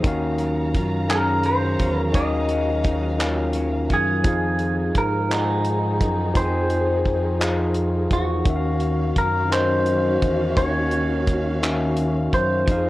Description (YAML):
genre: slow six-eight R&B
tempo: 57 BPM (dotted quarters)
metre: 6/8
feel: straight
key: Eb dorian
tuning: A4 = 439 Hz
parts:
  - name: electric guitar at the edge of break-up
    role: second line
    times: 0.0-4.8, 12.7-12.9 s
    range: Eb3 to Ab4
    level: -33 LUFS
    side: right 3 dB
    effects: wide subtle chorus
  - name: overdriven tine electric piano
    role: accompaniment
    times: 0.0-12.9 s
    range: Eb3 to Ab5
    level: -24 LUFS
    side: left 2 dB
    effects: none
  - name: dark studio string section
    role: sustained chords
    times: 0.0-12.9 s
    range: Eb3 to Bb5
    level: -32 LUFS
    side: right 1 dB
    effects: none
  - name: smooth gliding synth bass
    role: bass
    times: 0.0-12.9 s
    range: Eb2 to Ab2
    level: -25 LUFS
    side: right 1 dB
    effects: none
  - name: damped 70s drum kit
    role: drums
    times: 0.0-12.8 s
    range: handclaps, hi-hat, kick drum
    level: -24 LUFS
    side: equal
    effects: none
  - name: clean electric guitar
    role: melody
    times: 1.1-12.9 s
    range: Eb4 to Eb5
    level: -24 LUFS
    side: equal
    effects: lush chorus, slapback echo
room: small room ambience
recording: worn, warbling old tape, cassette tape, warbly pitch drift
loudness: -19 LUFS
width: side -17 dB against mid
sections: 0.0-4.3 A section; 4.3-12.9 A section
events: none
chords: 0.0 Ebm9; 4.3 Fm7; 8.5 Ebm9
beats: | 0.04 1.09 | 2.15 3.20 | 4.25 5.30 | 6.36 7.41 | 8.46 9.51 | 10.57 11.62 | 12.67